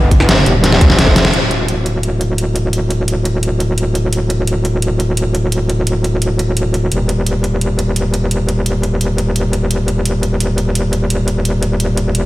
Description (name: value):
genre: dark technical drum and bass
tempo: 172 BPM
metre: 4/4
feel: straight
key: unclear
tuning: A4 = 439 Hz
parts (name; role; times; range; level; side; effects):
- metallic wobble bass; bass; 0.0-12.3 s; D1 to G1; -14 LUFS; equal; chorus, overdrive, sidechain pumping
- dubstep drum kit; drums; 0.1-12.2 s; hi-hat, snare drum; -18 LUFS; equal; none
- electronic kick drum; drums; 0.1-1.1 s; none; -10 LUFS; equal; none
room: light reverb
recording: played on a big sound system in a bare room, stone room reverb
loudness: -13 LUFS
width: side -17 dB against mid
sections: 0.0-1.3 A section; 1.3-12.3 B section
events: drop 0.0-1.3; drum fill 0.6-1.3; band accent 1.2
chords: none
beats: 0.29 0.64 0.99 | 1.33 1.68 2.03 2.38 | 2.73 3.08 3.43 3.78 | 4.12 4.47 4.82 5.17 | 5.52 5.87 6.22 6.57 | 6.92 7.26 7.61 7.96 | 8.31 8.66 9.01 9.36 | 9.71 10.06 10.40 10.75 | 11.10 11.45 11.80 12.15